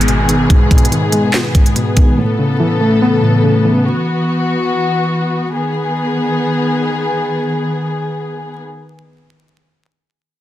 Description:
hip hop, trap; 143 BPM; 4/4; half-time; G# phrygian; A4 = 440 Hz
warbly lo-fi synth keys; accompaniment; 0.0-3.9 s; G#2 to B3; -13 LUFS; equal; chorus
muted studio string section; sustained chords; 0.0-8.6 s; C#3 to A4; -17 LUFS; left 1 dB
short 808-style bass; bass; 0.0-0.5 s; G#1; -18 LUFS; equal
trap drum kit; drums; 0.0-2.1 s; handclaps, hi-hat, kick drum, snare drum; -11 LUFS; equal
downlifter; sound effects; 0.0-2.2 s; -26 LUFS; right 1 dB
light reverb; dense, heavily limited modern master, vinyl crackle; -12 LUFS; side -13 dB against mid
0.0-5.5 A section; 5.5-8.9 B section
0.0 G#m; 2.2 Aadd9; 3.9 Esus2; 5.5 G#m

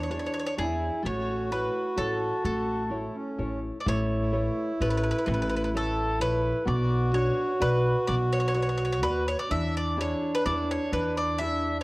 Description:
italian folk, Italian serenade; 128 BPM; 3/4; straight; A major; A4 = 439 Hz
bowl-back mandolin; melody; 0.0-11.8 s; G#4 to E5; -30 LUFS; equal
accordion; second line; 0.0-11.8 s; C#4 to F#4; -30 LUFS; right 1 dB
nylon-string guitar; accompaniment; 0.0-11.8 s; E3 to D5; -34 LUFS; left 1 dB
upright bass; bass; 0.0-11.8 s; A1 to E2; -30 LUFS; equal
moderate recital hall reverb, RT60 1.6 s; worn, warbling old tape, cassette tape, warbly pitch drift; -25 LUFS; side -22 dB against mid
0.0-3.9 A section; 3.9-11.8 A section
0.0 E7; 1.0 A; 3.9 Aadd9; 6.7 Bm; 9.5 E7

